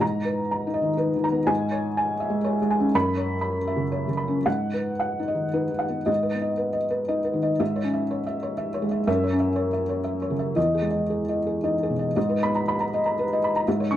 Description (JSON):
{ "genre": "neoclassical minimalist piano", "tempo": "109-126 BPM", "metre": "3/4", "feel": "rubato", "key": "G# minor", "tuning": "A4 = 442 Hz", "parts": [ { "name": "felt-muted upright piano", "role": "solo", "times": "0.0-14.0 s", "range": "E2 to C#6", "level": "-22 LUFS", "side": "equal", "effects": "none" } ], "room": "moderate studio reverb, RT60 0.6 s", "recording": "none", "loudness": "-22 LUFS", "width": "side -12 dB against mid", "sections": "0.0-6.1 A section; 6.1-12.2 B section; 12.2-14.0 C section", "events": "none", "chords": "0.0 G#madd9; 1.5 C#m/G#; 2.9 F#7sus4; 4.5 G#m7; 6.1 G#m; 7.6 C#m/G#; 9.1 F#5; 10.6 Emaj7; 12.2 G#madd9", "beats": "| 0.02 0.51 1.00 | 1.49 1.98 2.46 | 2.94 3.43 3.94 | 4.47 5.01 5.55 | 6.08 6.60 7.10 | 7.60 8.10 8.58 | 9.07 9.55 10.05 | 10.57 11.09 11.63 | 12.16 12.67 13.17 | 13.66" }